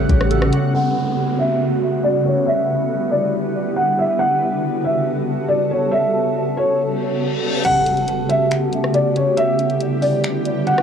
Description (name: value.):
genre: hip hop, atmospheric cloud-rap.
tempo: 139 BPM.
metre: 4/4.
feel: half-time.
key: G lydian.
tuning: A4 = 441 Hz.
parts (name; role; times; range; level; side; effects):
shimmering ambient pad; sustained chords; 0.0-10.8 s; C#3 to F#5; -19 LUFS; equal; chorus, built-in reverb, sidechain pumping, low-pass filter, cassette tape.
concert harp; arpeggios; 0.0-3.0 s; C#4 to A4; -30 LUFS; right 10 dB; low-pass filter, cassette tape, tape echo.
clean 808-style bass; bass; 0.0-0.5 s; A1; -18 LUFS; left 1 dB; none.
smooth R&B drum kit; drums; 0.1-0.6, 7.6-10.8 s; crash cymbal, finger snaps, hi-hat, kick drum, rim click; -24 LUFS; left 1 dB; cassette tape.
felt-muted upright piano; melody; 0.7-10.8 s; C#5 to F#5; -19 LUFS; equal; low-pass filter, tape echo.
downlifter, reverse cymbal and impact; sound effects; 0.7-4.2, 7.0-9.4 s; none; -29 LUFS; left 1 dB; none.
room: light reverb.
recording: home recording on cassette.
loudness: -16 LUFS.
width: side -7 dB against mid.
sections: 0.7-7.6 A section; 7.6-10.8 B section.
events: filter sweep 0.7-7.6; reverse cymbal 7.0-7.6; kick muted 7.6-10.8; impact 7.6-9.4.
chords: 0.0 A13; 0.7 Gmaj9#11; 2.5 Em7; 4.2 Gmaj9#11; 9.4 Em7.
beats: 0.31 | 0.74 1.17 1.60 2.04 | 2.47 2.90 3.33 3.76 | 4.20 4.63 5.06 5.49 | 5.92 6.35 6.79 7.22 | 7.65 8.08 8.51 8.94 | 9.38 9.81 10.24 10.67.